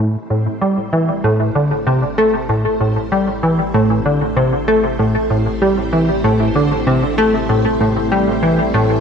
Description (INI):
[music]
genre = ambient, sequencer-driven space music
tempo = 96 BPM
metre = 4/4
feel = straight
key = A minor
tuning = A4 = 440 Hz
[part]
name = string machine, full ensemble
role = sustained chords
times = 0.0-9.0 s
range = A3 to C5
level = -24 LUFS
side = equal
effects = ensemble chorus
[part]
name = plucky analog bass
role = riff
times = 0.0-9.0 s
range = A2 to A3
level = -14 LUFS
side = equal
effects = analog chorus, tape echo
[part]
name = warm sub bass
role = bass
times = 0.0-9.0 s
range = A1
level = -30 LUFS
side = equal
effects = none
[sound]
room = wet spring reverb, RT60 2.3 s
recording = echo-heavy mix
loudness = -13 LUFS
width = side -6 dB against mid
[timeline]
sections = 0.0-9.0 A section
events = fade-in on string machine 0.0-9.0; fade-in on sub bass 0.0-9.0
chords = 0.0 Am7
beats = 0.62 1.24 1.87 | 2.49 3.12 3.74 4.37 | 4.99 5.62 6.24 6.87 | 7.49 8.12 8.74